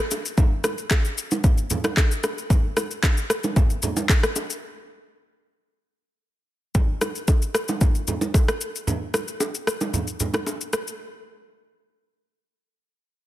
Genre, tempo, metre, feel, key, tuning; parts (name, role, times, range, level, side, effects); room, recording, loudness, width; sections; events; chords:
amapiano; 113 BPM; 4/4; straight
deep house drum kit; drums; 0.1-11.0 s; handclaps, kick drum, rim click, shaker; -21 LUFS; equal; overdrive
bongos and congas; percussion; 0.1-10.6 s; -28 LUFS; right 2 dB
little or no reverb; dense, heavily limited modern master; -21 LUFS; side -14 dB against mid
0.0-6.7 A section; 6.7-11.0 B section
break 4.6-6.7